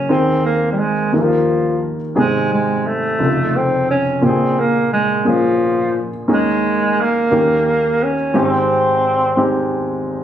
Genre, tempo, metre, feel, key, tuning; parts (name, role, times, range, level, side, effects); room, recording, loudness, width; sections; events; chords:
slow gospel; 58 BPM (dotted quarters); 6/8; straight; Ab major; A4 = 440 Hz
breathy alto saxophone; melody; 0.0-9.7 s; F3 to Db4; -16 LUFS; right 1 dB
warm grand piano; accompaniment; 0.0-10.2 s; F1 to C5; -17 LUFS; left 1 dB
light reverb; recorded on a phone in the room, studio ambience, compression; -14 LUFS; side -10 dB against mid
0.0-10.2 A section
0.1 Ab/Eb; 1.1 Eb; 2.2 Abmaj7; 3.2 F7b13; 4.2 Bbm7; 6.3 Eb7sus4; 7.3 Eb7; 8.3 Abmaj7